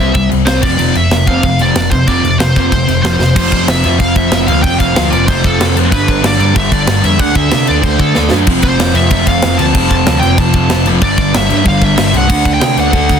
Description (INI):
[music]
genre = punk rock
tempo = 188 BPM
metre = 4/4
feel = straight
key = unclear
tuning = A4 = 439 Hz
[part]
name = high-gain lead guitar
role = melody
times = 0.0-13.2 s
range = A4 to A5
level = -16 LUFS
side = equal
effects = distortion
[part]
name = crunchy overdriven guitar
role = riff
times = 0.0-13.2 s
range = F2 to D4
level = -13 LUFS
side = equal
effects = none
[part]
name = overdriven picked electric bass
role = bass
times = 0.0-13.2 s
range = F1 to C3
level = -16 LUFS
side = equal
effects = none
[part]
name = tight metal drum kit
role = drums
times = 0.1-13.2 s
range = crash cymbal, kick drum, snare drum, splash cymbal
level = -15 LUFS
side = equal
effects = none
[sound]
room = little or no reverb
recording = dense, heavily limited modern master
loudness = -9 LUFS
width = side -7 dB against mid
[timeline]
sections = 0.0-3.4 A section; 3.4-13.2 B section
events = drum fill 3.2, 8.2-8.5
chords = 0.0 C; 0.6 F5; 5.9 G; 7.2 D5; 8.5 F; 11.0 G5; 12.3 D